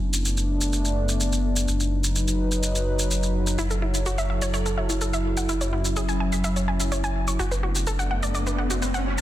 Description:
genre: melodic techno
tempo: 126 BPM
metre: 4/4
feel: straight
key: unclear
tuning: A4 = 439 Hz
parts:
  - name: sweeping resonant pad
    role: sustained chords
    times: 0.0-9.2 s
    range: F#3 to B4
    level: -28 LUFS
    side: equal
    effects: chorus, phaser
  - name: dark detuned saw bass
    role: bass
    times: 0.0-9.2 s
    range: F#1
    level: -25 LUFS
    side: equal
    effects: none
  - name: shaker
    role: drums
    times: 0.1-9.2 s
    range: none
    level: -30 LUFS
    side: equal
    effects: none
  - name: wide unison pluck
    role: arpeggios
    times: 3.6-9.2 s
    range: E4 to C#6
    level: -29 LUFS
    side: equal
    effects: digital delay
  - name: riser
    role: sound effects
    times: 8.0-9.2 s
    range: none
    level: -32 LUFS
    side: equal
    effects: none
room: light reverb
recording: dense, heavily limited modern master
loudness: -22 LUFS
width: side -13 dB against mid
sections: 0.0-9.2 A section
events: riser 8.0-9.2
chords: 0.0 Bm7/F#; 1.7 B/F#; 3.6 F#m7; 5.5 C#m/F#; 7.4 Bm7/F#

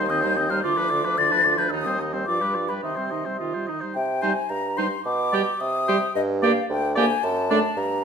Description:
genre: quick classical-period movement for wind quintet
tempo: 110 BPM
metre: 2/4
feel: straight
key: C minor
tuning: A4 = 440 Hz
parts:
  - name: mellow hollow silver concert flute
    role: melody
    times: 0.0-8.0 s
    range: Eb5 to A6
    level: -24 LUFS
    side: left 4 dB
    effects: none
  - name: warm oboe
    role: second line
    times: 0.0-7.6 s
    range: B4 to Eb5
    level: -29 LUFS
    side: left 1 dB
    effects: none
  - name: bright clarinet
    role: accompaniment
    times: 0.0-7.6 s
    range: C4 to G4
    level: -29 LUFS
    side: right 8 dB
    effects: none
  - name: dark French horn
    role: accompaniment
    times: 0.0-7.6 s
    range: D3 to Bb3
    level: -30 LUFS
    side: right 1 dB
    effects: none
  - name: mellow bassoon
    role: bass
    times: 0.0-8.0 s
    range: D2 to C3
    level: -27 LUFS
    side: right 2 dB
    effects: none
room: wet stone room reverb, RT60 1.1 s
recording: none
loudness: -21 LUFS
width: side -6 dB against mid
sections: 0.0-4.0 A section; 4.0-8.0 B section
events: none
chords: 0.0 Cm/Eb; 0.6 Bdim/D; 1.7 Cm/Eb; 2.3 G7; 2.8 Cm; 5.1 G/B; 5.6 Cm; 6.2 Gm; 7.2 D/F#

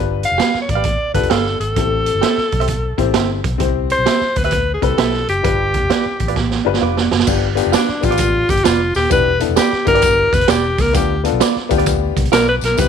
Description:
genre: uptempo 1960s-style soul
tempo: 131 BPM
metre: 4/4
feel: swing 65% on 8ths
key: G mixolydian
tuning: A4 = 440 Hz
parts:
  - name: warm upright piano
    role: accompaniment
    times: 0.0-12.9 s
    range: B3 to B5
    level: -21 LUFS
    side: left 16 dB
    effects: none
  - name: vintage muted fingered electric bass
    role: bass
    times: 0.0-12.9 s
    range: Eb1 to D2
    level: -22 LUFS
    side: left 1 dB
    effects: none
  - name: bright alto saxophone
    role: melody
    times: 0.2-12.9 s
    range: D4 to F5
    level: -17 LUFS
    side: left 1 dB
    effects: none
  - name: raw garage drum kit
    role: drums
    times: 0.2-12.9 s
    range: crash cymbal, hi-hat, kick drum, snare drum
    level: -18 LUFS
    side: right 4 dB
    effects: none
  - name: direct-recorded clean electric guitar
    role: stabs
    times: 0.4-12.5 s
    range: F4 to F5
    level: -23 LUFS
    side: right 12 dB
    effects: none
  - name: tambourine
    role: percussion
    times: 7.3-12.9 s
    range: none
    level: -30 LUFS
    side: left 18 dB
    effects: none
room: light reverb, small room ambience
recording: 1960s-style stereo with parts hard left and right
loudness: -14 LUFS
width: side -7 dB against mid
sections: 0.0-7.3 A section; 7.3-12.9 B section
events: drum fill 6.4-7.3; alto saxophone solo 7.3-12.9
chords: 0.0 G7; 1.8 Am7; 3.6 Cmaj7; 5.4 G7; 9.1 Em7; 11.0 G7

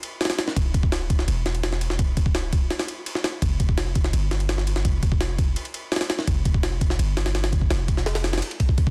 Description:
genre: drum and bass, jungle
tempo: 168 BPM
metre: 4/4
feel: straight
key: unclear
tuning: A4 = 442 Hz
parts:
  - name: jungle sampler-style drum kit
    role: drums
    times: 0.0-8.9 s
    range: kick drum, ride cymbal, snare drum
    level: -25 LUFS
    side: equal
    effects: small room reverb
  - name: warm 808-style bass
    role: bass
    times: 0.6-8.4 s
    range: D1 to G1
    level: -27 LUFS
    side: equal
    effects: none
room: digital ambience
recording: dense, heavily limited modern master, vinyl crackle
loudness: -24 LUFS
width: mono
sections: 0.0-8.9 A section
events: none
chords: none

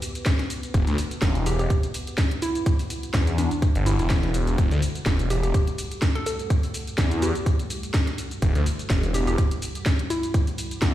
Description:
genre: bass house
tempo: 125 BPM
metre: 4/4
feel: swing 55% on 16ths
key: E minor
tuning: A4 = 440 Hz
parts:
  - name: hollow square pluck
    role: melody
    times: 0.0-10.5 s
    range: D4 to A4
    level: -31 LUFS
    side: right 1 dB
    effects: chorus, dub echo
  - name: dark analog pad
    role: sustained chords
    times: 0.0-10.9 s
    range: G3 to F#5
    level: -37 LUFS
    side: right 4 dB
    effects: chorus, vintage 12-bit sampler grit, sidechain pumping
  - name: garage drum kit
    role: drums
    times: 0.0-10.9 s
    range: hi-hat, shaker, snare drum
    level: -31 LUFS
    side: left 1 dB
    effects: overdrive, studio reverb
  - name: electronic kick drum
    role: drums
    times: 0.3-10.9 s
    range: none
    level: -21 LUFS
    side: equal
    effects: overdrive, studio reverb
  - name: phased detuned saw bass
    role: bass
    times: 0.7-10.9 s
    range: E1 to E2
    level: -23 LUFS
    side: equal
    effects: phaser, sidechain pumping
room: digital ambience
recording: played on a big sound system in a bare room, large studio reverb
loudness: -21 LUFS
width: side -13 dB against mid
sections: 0.0-10.9 A section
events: none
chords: 0.0 Emadd9

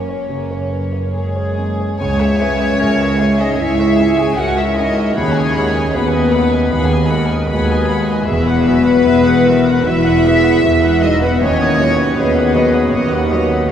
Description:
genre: cinematic, emotional film score for orchestra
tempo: 76 BPM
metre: 4/4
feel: uneven beats, rubato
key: unclear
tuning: A4 = 440 Hz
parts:
  - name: warm chamber violin section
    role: melody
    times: 0.0-13.7 s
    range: C#5 to B5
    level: -26 LUFS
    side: left 3 dB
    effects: none
  - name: rich studio violin section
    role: second line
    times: 0.0-13.3 s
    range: C#4 to G#5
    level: -24 LUFS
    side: left 1 dB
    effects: none
  - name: dark baby grand piano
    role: accompaniment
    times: 0.0-13.7 s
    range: C#2 to F#5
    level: -22 LUFS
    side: equal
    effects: none
  - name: warm studio viola section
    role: accompaniment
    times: 0.0-13.7 s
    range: A#3 to F#5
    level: -25 LUFS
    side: equal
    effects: none
  - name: warm symphonic cello section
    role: bass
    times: 0.0-13.6 s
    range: C#2 to F#2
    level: -21 LUFS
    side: right 2 dB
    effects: none
  - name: warm symphonic double bass section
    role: bass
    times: 0.0-13.7 s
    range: E1 to D#2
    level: -20 LUFS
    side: right 2 dB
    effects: none
  - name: large flute ensemble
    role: second line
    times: 1.1-13.3 s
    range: G#4 to G#5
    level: -22 LUFS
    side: equal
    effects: none
  - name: dark French horn section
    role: sustained chords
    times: 1.1-13.3 s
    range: G#3 to G#4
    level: -17 LUFS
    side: left 2 dB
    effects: none
  - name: bright clarinet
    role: second line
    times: 2.0-13.7 s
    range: F#4 to C#5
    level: -25 LUFS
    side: left 1 dB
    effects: none
room: wet cathedral reverb, RT60 6.0 s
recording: recorded in a church or concert hall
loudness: -12 LUFS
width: side -9 dB against mid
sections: 0.0-2.0 A section; 2.0-13.7 B section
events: none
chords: 0.0 F#; 2.0 C#m; 5.2 G#m7/D#; 8.3 Esus2; 11.4 Badd9/D#

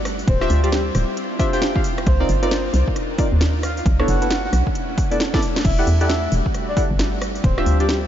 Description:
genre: UK garage, two-step garage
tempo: 134 BPM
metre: 4/4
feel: swing 62% on 16ths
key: unclear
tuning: A4 = 439 Hz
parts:
  - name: soft string machine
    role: sustained chords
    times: 0.0-8.1 s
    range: G3 to F#4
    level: -29 LUFS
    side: equal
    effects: ensemble chorus, sidechain pumping
  - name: hollow knocking FM bass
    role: bass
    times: 0.0-8.1 s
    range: D1 to E2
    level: -19 LUFS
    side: equal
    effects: none
  - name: house drum kit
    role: drums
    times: 0.1-8.0 s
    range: crash cymbal, hi-hat, rim click, snare drum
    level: -26 LUFS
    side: equal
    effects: overdrive
  - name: breathy flute-like synth lead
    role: melody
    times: 0.3-8.0 s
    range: G4 to F#5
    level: -27 LUFS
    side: equal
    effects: wide subtle chorus, ping-pong delay
  - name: electronic kick drum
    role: drums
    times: 0.3-7.5 s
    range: none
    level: -22 LUFS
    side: equal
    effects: overdrive
  - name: deep mellow chord stab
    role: stabs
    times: 0.4-7.9 s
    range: B3 to G5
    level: -24 LUFS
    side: equal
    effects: chorus, ping-pong delay
room: light reverb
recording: nothing above 7.5 kHz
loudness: -17 LUFS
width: side -10 dB against mid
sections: 0.0-8.1 A section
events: drum fill 5.3-5.6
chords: 0.3 Dm11; 1.8 Cm11; 3.9 Bm11; 5.6 Em11; 7.4 Dm11

